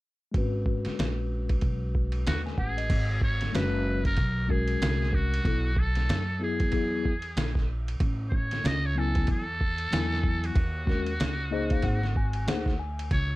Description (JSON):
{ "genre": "hip hop, jazz-hop", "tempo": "94 BPM", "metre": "4/4", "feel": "swing 60% on 16ths", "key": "G# minor", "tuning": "A4 = 440 Hz", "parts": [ { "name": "mellow tine electric piano", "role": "accompaniment", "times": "0.3-13.1 s", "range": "F#3 to G#5", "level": "-32 LUFS", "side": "left 4 dB", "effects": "medium stereo tremolo" }, { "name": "upright bass", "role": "bass", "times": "0.3-13.4 s", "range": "F#1 to F#2", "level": "-29 LUFS", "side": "equal", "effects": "none" }, { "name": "lo-fi sampler-style drum kit", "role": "drums", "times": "0.3-13.3 s", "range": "crash cymbal, hi-hat, kick drum, ride cymbal, snare drum", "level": "-29 LUFS", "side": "equal", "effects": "overdrive" }, { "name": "trumpet with metal mute", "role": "melody", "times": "2.3-13.4 s", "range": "F#4 to D#5", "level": "-33 LUFS", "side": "right 1 dB", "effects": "none" } ], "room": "light reverb", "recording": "dark, warm production", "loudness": "-25 LUFS", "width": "side -19 dB against mid", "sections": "0.3-2.9 A section; 2.9-13.4 B section", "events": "tine electric piano fill 11.2-13.1", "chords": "0.3 G#m7; 5.5 B5; 6.7 E; 8.0 Amaj7; 10.6 D#m7; 11.8 G#7" }